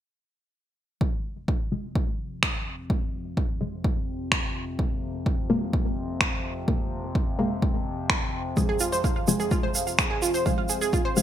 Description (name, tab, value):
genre	melodic techno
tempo	127 BPM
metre	4/4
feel	straight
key	F minor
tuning	A4 = 440 Hz
part	filtered dub chord stab	stabs	1.0-11.2 s	Cb3 to Bb3	-28 LUFS	left 2 dB	chorus, sidechain pumping, digital delay
part	analog drone	drone	1.5-11.2 s	F2 to C3	-35 LUFS	left 2 dB	chorus, sidechain pumping
part	electronic kick drum	drums	1.0-11.0 s	none	-27 LUFS	equal	none
part	electronic finger snaps	drums	2.4-10.1 s	none	-25 LUFS	equal	gated reverb
part	analog pluck	arpeggios	8.6-11.2 s	F4 to F5	-27 LUFS	right 3 dB	chorus, sidechain pumping, digital delay
part	tube shaker	percussion	8.6-11.2 s	none	-30 LUFS	right 5 dB	none
room	moderate plate reverb, RT60 1.5 s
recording	bright 1980s-style digital production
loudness	-24 LUFS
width	side -11 dB against mid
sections	1.0-11.2 A section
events	filter sweep on synth stab 1.0-11.2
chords	1.0 Fm; 4.8 Abmadd9; 8.6 Fm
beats	| 1.01 1.48 1.95 2.43 | 2.90 3.37 3.84 4.32 | 4.79 5.26 5.73 6.21 | 6.68 7.15 7.62 8.10 | 8.57 9.04 9.51 9.99 | 10.46 10.93